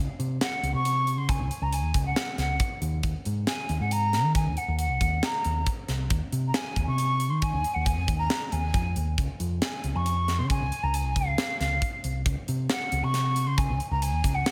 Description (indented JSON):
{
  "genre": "progressive instrumental, band music in an uneven meter",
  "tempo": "137 BPM",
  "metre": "7/4",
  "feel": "straight",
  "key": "unclear",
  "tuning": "A4 = 438 Hz",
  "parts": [
    { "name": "picked electric bass", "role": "bass", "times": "0.0-14.4 s", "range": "C2 to Eb3", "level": "-30 LUFS", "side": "equal", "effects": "none" },
    { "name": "tight metal drum kit", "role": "drums", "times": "0.2-14.5 s", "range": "hi-hat, kick drum, snare drum", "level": "-32 LUFS", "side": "equal", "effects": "none" },
    { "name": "breathy mellow jazz flute", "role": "melody", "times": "0.4-14.5 s", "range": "F5 to Db6", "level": "-32 LUFS", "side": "equal", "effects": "slapback echo" }
  ],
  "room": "light reverb, small room ambience",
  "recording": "none",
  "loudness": "-27 LUFS",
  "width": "mono",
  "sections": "0.0-14.5 A section",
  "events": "none",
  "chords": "0.0 Gb5/Db; 3.0 Ebm; 6.1 Ab/Eb; 9.2 Db; 12.3 Gb5/Db"
}